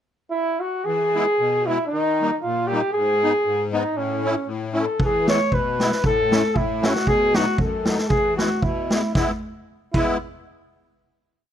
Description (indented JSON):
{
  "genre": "alpine folk, alpine dance band",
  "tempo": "116 BPM",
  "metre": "2/4",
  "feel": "swing 54% on 8ths",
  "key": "E major",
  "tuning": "A4 = 440 Hz",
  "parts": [
    { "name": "mellow flugelhorn", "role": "melody", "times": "0.3-10.2 s", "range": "C#4 to C#5", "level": "-21 LUFS", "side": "equal", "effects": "none" },
    { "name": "musette accordion", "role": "accompaniment", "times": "0.9-10.2 s", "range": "F#2 to E4", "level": "-25 LUFS", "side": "left 3 dB", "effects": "none" },
    { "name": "street-band drum kit", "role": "drums", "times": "5.0-10.1 s", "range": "crash cymbal, kick drum, snare drum", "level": "-22 LUFS", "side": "right 1 dB", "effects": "none" }
  ],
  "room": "little or no reverb",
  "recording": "close, detailed microphones",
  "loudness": "-19 LUFS",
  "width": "side -9 dB against mid",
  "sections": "0.0-0.9 pickup bar; 0.9-9.2 A section; 9.2-10.2 final chord",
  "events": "none",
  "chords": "0.0 N.C.; 0.9 E; 1.9 D#; 2.9 G#m; 4.0 A; 5.0 E; 6.0 A; 7.1 B; 8.1 E"
}